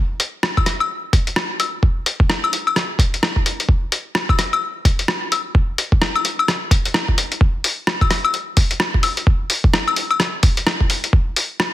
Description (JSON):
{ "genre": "future garage", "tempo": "129 BPM", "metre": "4/4", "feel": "swing 60% on 16ths", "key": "none", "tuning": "none", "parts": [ { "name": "lo-fi sampler-style drum kit", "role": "drums", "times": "0.2-11.7 s", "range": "claves, hi-hat, rim click", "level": "-18 LUFS", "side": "left 2 dB", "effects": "overdrive" }, { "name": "electronic kick drum", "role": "drums", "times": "0.6-11.2 s", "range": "none", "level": "-16 LUFS", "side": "equal", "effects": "overdrive" } ], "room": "light reverb", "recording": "dense, heavily limited modern master", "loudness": "-16 LUFS", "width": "side -15 dB against mid", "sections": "0.0-7.4 A section; 7.4-11.7 B section", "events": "none", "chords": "none" }